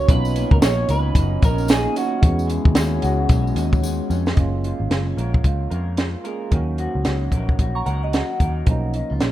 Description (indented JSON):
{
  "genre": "indie pop, bedroom pop",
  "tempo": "112 BPM",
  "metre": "4/4",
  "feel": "swing 60% on 16ths",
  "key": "F# major",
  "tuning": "A4 = 441 Hz",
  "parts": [
    { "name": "electric guitar through a small old amp", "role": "melody", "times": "0.0-2.5 s", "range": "F#4 to C#5", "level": "-24 LUFS", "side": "right 2 dB", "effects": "analog chorus, slapback echo" },
    { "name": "barky tine electric piano", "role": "accompaniment", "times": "0.0-9.3 s", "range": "E#3 to G#4", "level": "-30 LUFS", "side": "right 5 dB", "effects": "cassette tape" },
    { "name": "electric guitar through a small old amp", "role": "accompaniment", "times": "0.0-9.3 s", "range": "D#3 to A#4", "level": "-28 LUFS", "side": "left 1 dB", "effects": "lush chorus, vibrato effect" },
    { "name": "warm French horn section", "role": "sustained chords", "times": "0.0-4.4 s", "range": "F#3 to G#4", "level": "-31 LUFS", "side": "equal", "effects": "stereo widening" },
    { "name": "vintage muted picked electric bass", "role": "bass", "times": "0.0-9.3 s", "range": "F#1 to E#2", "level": "-22 LUFS", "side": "equal", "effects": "none" },
    { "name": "compact cocktail drum kit", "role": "drums", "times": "0.1-9.3 s", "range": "hi-hat, kick drum, snare drum", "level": "-18 LUFS", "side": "equal", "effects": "none" },
    { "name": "tambourine", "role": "percussion", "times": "0.2-4.4 s", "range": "none", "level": "-39 LUFS", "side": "left 5 dB", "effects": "none" },
    { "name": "soft synth bell", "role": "second line", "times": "7.8-8.6 s", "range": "D#5 to C#6", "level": "-30 LUFS", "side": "right 4 dB", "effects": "tremolo, analog chorus, slapback echo" }
  ],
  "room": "studio reverb",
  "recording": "rough home demo mix",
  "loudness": "-17 LUFS",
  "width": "side -14 dB against mid",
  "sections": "0.0-4.4 A section; 4.4-9.3 B section",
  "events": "drum fill 3.8-4.4",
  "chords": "0.1 Bmaj9#11; 2.2 E69; 4.4 F#maj9; 6.5 D#m7; 8.7 Bmaj9#11"
}